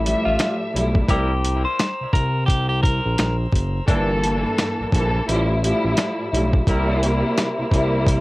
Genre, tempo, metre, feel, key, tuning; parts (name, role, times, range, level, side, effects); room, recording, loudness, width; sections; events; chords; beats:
hip hop, boom-bap hip-hop; 86 BPM; 4/4; swing 60% on 16ths; A4 = 440 Hz
clean electric guitar; melody; 0.0-3.4 s; E4 to C5; -25 LUFS; left 1 dB; phaser, high-pass filter, low-pass filter
dark studio string section; accompaniment; 0.0-8.2 s; G2 to E5; -22 LUFS; equal; cassette tape, high-pass filter, low-pass filter
tonewheel organ; sustained chords; 0.0-8.2 s; Bb3 to E6; -34 LUFS; equal; stopped rotary speaker, high-pass filter, low-pass filter
smooth synth bass; bass; 0.0-8.2 s; F#1 to C2; -22 LUFS; equal; transformer saturation
dusty soul sampler-style drum kit; drums; 0.1-8.2 s; hi-hat, kick drum, snare drum; -20 LUFS; equal; overdrive
warm horn section; stabs; 1.1-7.1 s; E3 to Bb4; -30 LUFS; equal; high-pass filter, low-pass filter, ping-pong delay
little or no reverb; worn, warbling old tape, cassette tape, vinyl crackle, warbly pitch drift; -18 LUFS; side -20 dB against mid
0.0-8.2 A section
0.0 Fmaj7/A; 1.1 C7; 3.9 Gm69; 5.3 Fmaj7/A; 6.7 C7
0.39 | 1.09 1.79 2.48 3.18 | 3.88 4.58 5.27 5.97 | 6.67 7.37 8.06